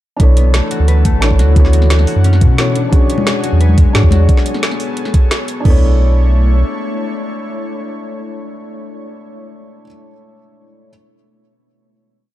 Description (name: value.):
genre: liquid drum and bass.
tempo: 176 BPM.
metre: 4/4.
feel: straight.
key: B dorian.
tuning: A4 = 440 Hz.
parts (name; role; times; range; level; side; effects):
felt-muted upright piano; accompaniment; 0.2-10.9 s; D4 to C#5; -23 LUFS; equal; ping-pong delay.
airy breathy pad; sustained chords; 0.2-9.1 s; E3 to C#5; -24 LUFS; equal; chorus, sidechain pumping.
concert harp; arpeggios; 0.2-8.8 s; B2 to B4; -22 LUFS; left 5 dB; ping-pong delay.
warm sub bass; bass; 0.2-6.6 s; A1 to G#2; -10 LUFS; equal; none.
garage drum kit; drums; 0.2-5.7 s; crash cymbal, kick drum, toms; -11 LUFS; equal; overdrive.
garage drum kit; drums; 0.2-5.5 s; hi-hat, snare drum; -21 LUFS; right 1 dB; overdrive.
congas; percussion; 3.2-4.2 s; none; -21 LUFS; left 3 dB; none.
room: digital ambience.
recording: dark, warm production.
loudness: -10 LUFS.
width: side -14 dB against mid.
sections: 0.2-5.7 drop; 5.7-8.4 final chord.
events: drop 0.2-5.7.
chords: 0.2 Bm11; 1.6 Dmaj9; 2.8 E13; 4.3 Amaj9; 5.7 Bm11.